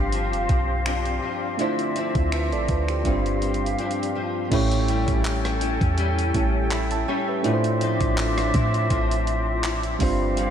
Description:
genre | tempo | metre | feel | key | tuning
contemporary R&B | 82 BPM | 4/4 | swing 54% on 16ths | unclear | A4 = 440 Hz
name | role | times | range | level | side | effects
soft electric-piano-like synth keys | accompaniment | 0.0-10.5 s | G3 to B5 | -27 LUFS | right 5 dB | chorus
breathy mellow flute section | sustained chords | 0.0-10.5 s | C4 to G5 | -28 LUFS | left 1 dB | none
nylon-string guitar | arpeggios | 0.0-10.5 s | G2 to E4 | -28 LUFS | left 6 dB | ensemble chorus, analog delay
clean 808-style bass | bass | 0.0-10.5 s | F1 to A2 | -25 LUFS | equal | none
clean 12-bit digital drum machine | drums | 0.1-10.5 s | crash cymbal, finger snaps, handclaps, hi-hat, kick drum, rim click | -29 LUFS | equal | vintage 12-bit sampler grit
room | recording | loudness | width
moderate cathedral reverb, RT60 5.5 s | dreamy mix soaked in reverb | -21 LUFS | side -9 dB against mid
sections
0.0-4.5 A section; 4.5-10.5 B section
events
break 3.8-4.5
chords
0.0 G7sus4; 1.6 Dm9; 3.1 G7sus4; 4.5 A7; 7.4 Dm9/A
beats
0.13 0.86 | 1.59 2.32 3.05 3.79 | 4.52 5.25 5.98 6.71 | 7.44 8.18 8.91 9.64 | 10.37

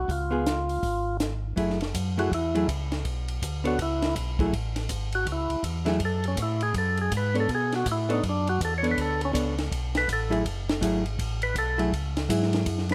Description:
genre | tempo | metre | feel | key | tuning
soul jazz organ trio | 162 BPM | 4/4 | swing 63% on 8ths | F# minor | A4 = 440 Hz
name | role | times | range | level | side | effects
percussive tonewheel organ | melody | 0.0-12.9 s | C#4 to C#5 | -31 LUFS | equal | slow rotary speaker
mellow tonewheel organ | bass | 0.0-12.9 s | F#1 to B2 | -32 LUFS | equal | slow rotary speaker
compact cocktail drum kit | drums | 0.1-12.9 s | hi-hat, kick drum, ride cymbal, snare drum | -35 LUFS | equal | none
archtop guitar, miked and amplified | accompaniment | 0.3-12.9 s | F#3 to C#5 | -30 LUFS | equal | none
room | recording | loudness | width
light reverb | none | -27 LUFS | mono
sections
0.0-1.6 A section; 1.6-12.9 B section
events
tonewheel organ solo 1.6-12.9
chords
0.1 C#; 1.6 F#m9; 3.0 Bm9; 4.5 F#m9; 7.5 Bm9; 10.4 F#m9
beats
| 0.09 0.46 0.83 1.20 | 1.57 1.94 2.31 2.68 | 3.05 3.42 3.79 4.16 | 4.53 4.90 5.27 5.64 | 6.01 6.38 6.75 7.12 | 7.49 7.86 8.22 8.60 | 8.96 9.34 9.71 10.07 | 10.45 10.81 11.19 11.55 | 11.92 12.29 12.66

